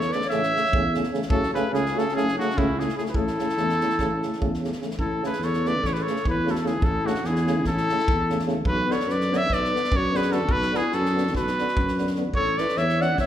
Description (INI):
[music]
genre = balkan folk, Balkan brass band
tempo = 294 BPM (eighths)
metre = 9/8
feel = straight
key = A major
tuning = A4 = 440 Hz
[part]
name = clear trumpet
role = melody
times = 0.0-13.3 s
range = E4 to F#5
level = -26 LUFS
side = equal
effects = none
[part]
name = mellow clarinet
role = second line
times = 0.0-13.3 s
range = C#4 to D5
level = -30 LUFS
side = left 3 dB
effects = none
[part]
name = mellow tuba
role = bass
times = 0.0-13.3 s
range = F#1 to F#2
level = -28 LUFS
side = equal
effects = none
[part]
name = natural country drum kit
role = percussion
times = 0.0-13.3 s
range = kick drum, snare drum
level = -30 LUFS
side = equal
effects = none
[part]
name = mellow French horn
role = accompaniment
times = 0.1-13.1 s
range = A3 to C#4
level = -32 LUFS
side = left 5 dB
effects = none
[part]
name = warm euphonium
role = accompaniment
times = 0.1-13.1 s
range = C#3 to E3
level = -32 LUFS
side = right 6 dB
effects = none
[sound]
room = wet recital hall reverb, RT60 1.7 s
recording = recorded in a church or concert hall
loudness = -21 LUFS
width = side -10 dB against mid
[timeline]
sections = 0.0-5.0 A section; 5.0-13.3 B section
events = none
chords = 0.0 A; 1.3 F#m; 3.2 A; 8.7 Bm; 12.3 A